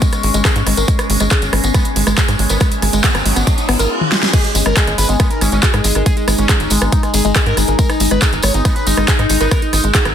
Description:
psychedelic trance; 139 BPM; 4/4; straight; G# minor; A4 = 440 Hz
overtone-sweeping drone; sustained chords; 0.0-10.1 s; G#3 to D#4; -22 LUFS; left 2 dB; chorus, built-in reverb, phaser, sidechain pumping
woody wave-folded pluck; riff; 0.0-10.0 s; G#3 to A#4; -22 LUFS; moving between left 7 dB and right 7 dB; chorus, auto-pan, sidechain pumping, digital delay
big-room dance drum kit; drums; 0.0-10.1 s; crash cymbal, handclaps, hi-hat, rim click, snare drum, toms; -18 LUFS; equal; overdrive, small room ambience
electronic kick drum; drums; 0.0-10.0 s; -15 LUFS; equal; overdrive, small room ambience
tambourine; percussion; 0.0-10.1 s; -25 LUFS; left 1 dB
tight sequencer bass; bass; 0.2-10.1 s; G#1 to G#2; -17 LUFS; equal; tube saturation
riser; sound effects; 2.2-4.3 s; -24 LUFS; right 1 dB
metallic wobble bass; second line; 1.7-10.1 s; F#3 to C#4; -30 LUFS; right 2 dB; distortion, chorus, sidechain pumping, high-pass filter, ping-pong delay
overdriven synth lead; melody; 4.3-10.0 s; G#3 to C#5; -22 LUFS; equal; distortion, phaser, sidechain pumping, ping-pong delay
digital ambience; dense, heavily limited modern master; -12 LUFS; side -9 dB against mid
0.0-4.3 A section; 4.3-10.1 B section
riser 2.2-4.3; drum fill 4.0-4.3; drop 4.3-10.1
0.0 G#5
0.02 0.45 | 0.88 1.31 1.74 2.18 | 2.61 3.04 3.47 3.90 | 4.33 4.77 5.20 5.63 | 6.06 6.49 6.92 7.36 | 7.79 8.22 8.65 9.08 | 9.51 9.95

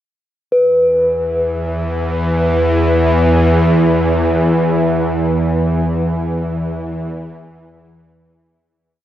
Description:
dark ambient drone; free time; A4 = 440 Hz
bowed-like drone; drone; 1.0-8.9 s; E2 to E3; -14 LUFS; equal; built-in reverb
bronze singing bowl; texture; 0.5-8.8 s; B4; -18 LUFS; left 1 dB
wet huge ambient reverb, RT60 7.4 s; worn, warbling old tape, cassette tape, warbly pitch drift; -13 LUFS; side -12 dB against mid
0.5-8.8 A section
fade-out 4.6-8.8
0.5 E5
free time

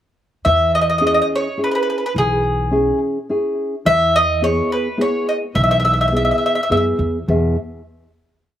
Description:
italian folk, Italian serenade; 106 BPM; 3/4; straight; E major; A4 = 439 Hz
mandolin; melody; 0.4-6.8 s; G#4 to E5; -17 LUFS; equal; slapback echo
nylon-string guitar; accompaniment; 0.5-7.6 s; E2 to E5; -20 LUFS; equal; slapback echo
upright bass; bass; 0.5-7.5 s; B1 to F#2; -21 LUFS; equal
little or no reverb; recorded outdoors, with no room sound; -15 LUFS; side -11 dB against mid
0.5-7.3 A section; 7.3-8.6 final chord
0.5 E6; 3.8 E
| 0.46 1.02 1.59 | 2.15 2.72 3.29 | 3.85 4.41 4.98 | 5.54 6.12 6.70 | 7.28

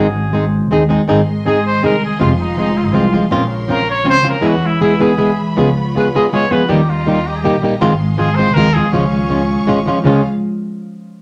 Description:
mexican folk, mariachi; 161 BPM; 3/4; straight; Db major; A4 = 440 Hz
clear trumpet; melody; 0.0-10.2 s; Ab3 to Eb5; -21 LUFS; equal
flamenco guitar; accompaniment; 0.0-10.2 s; F2 to Ab4; -16 LUFS; equal
concert harp; arpeggios; 0.0-10.3 s; Db3 to Gb5; -21 LUFS; equal
upright bass; bass; 0.0-10.2 s; F1 to E2; -23 LUFS; equal
clear studio violin section; sustained chords; 1.1-10.2 s; Db4 to Db6; -31 LUFS; equal
moderate studio reverb, RT60 0.5 s; -14 LUFS; mono
0.0-10.0 A section; 10.0-11.2 B section
0.0 Ab; 2.2 Fm; 3.3 Bbmadd9; 4.4 E; 5.6 Db7; 6.7 Eb; 7.8 Ab6; 10.0 Db
0.32 0.70 | 1.08 1.46 1.84 | 2.21 2.58 2.95 | 3.32 3.69 4.06 | 4.43 4.81 5.19 | 5.57 5.95 6.32 | 6.69 7.07 7.44 | 7.81 8.18 8.55 | 8.92 9.29 9.66 | 10.04

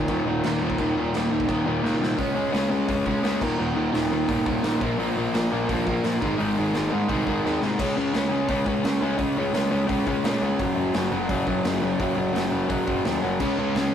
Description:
punk rock; 171 BPM; 4/4; straight; A4 = 439 Hz
distorted electric guitar; riff; 0.0-13.9 s; Eb2 to Db4; -29 LUFS; right 7 dB; distortion
overdriven electric guitar; riff; 0.0-7.6, 13.4-13.9 s; Eb2 to Db4; -33 LUFS; right 2 dB
overdriven semi-hollow guitar; riff; 0.0-13.9 s; Eb2 to Db4; -24 LUFS; left 3 dB
fuzz picked electric bass; bass; 0.0-13.9 s; Eb1 to Bb2; -33 LUFS; right 1 dB; overdrive
raw garage drum kit; drums; 0.0-13.8 s; crash cymbal, hi-hat, kick drum, snare drum; -31 LUFS; right 1 dB
light reverb; rough rehearsal-room recording; -22 LUFS; side -9 dB against mid
0.0-2.2 A section; 2.2-7.8 B section; 7.8-13.9 C section
drum fill 1.8-2.2, 7.5-7.8
0.0 Eb5; 2.2 Db5; 3.4 Eb5; 4.8 Bb5; 6.2 Ab; 7.8 Db5; 10.6 Gb5; 13.4 Db5
0.09 0.44 | 0.79 1.14 1.49 1.84 | 2.19 2.54 2.89 3.24 | 3.59 3.94 4.29 4.64 | 5.00 5.35 5.70 6.05 | 6.40 6.75 7.10 7.45 | 7.80 8.15 8.50 8.85 | 9.20 9.55 9.90 10.25 | 10.60 10.95 11.30 11.65 | 12.00 12.35 12.70 13.05 | 13.40 13.76

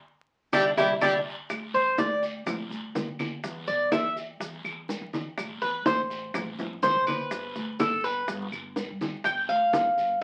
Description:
latin, Cuban son and guajira; 124 BPM; 4/4; straight; A4 = 439 Hz
brilliant trumpet; melody; 0.5-1.1 s; G4; -29 LUFS; equal
Cuban tres; arpeggios; 0.5-10.2 s; D4 to G5; -27 LUFS; equal
upright bass; bass; 0.5-10.2 s; F#1 to E3; -42 LUFS; equal
bongos; percussion; 0.5-10.2 s; -39 LUFS; equal
claves; percussion; 0.5-9.5 s; -40 LUFS; equal
congas; percussion; 0.5-10.2 s; -34 LUFS; equal
guiro; percussion; 0.5-10.2 s; -45 LUFS; equal
maracas; percussion; 0.5-10.2 s; -50 LUFS; equal
wet small room reverb, RT60 0.5 s; very old 78 rpm record, vinyl crackle; -28 LUFS; mono
0.0-1.5 A section; 1.5-10.2 B section
band accent 0.0-1.5; drum fill 1.3; Cuban tres solo 1.5-10.2
0.0 Cadd9; 1.5 D5; 3.4 E5; 5.4 A5; 7.3 G
0.05 0.53 1.01 | 1.50 1.99 2.47 2.95 | 3.44 3.92 4.41 4.89 | 5.38 5.86 6.35 6.83 | 7.32 7.80 8.28 8.77 | 9.25 9.74 10.22

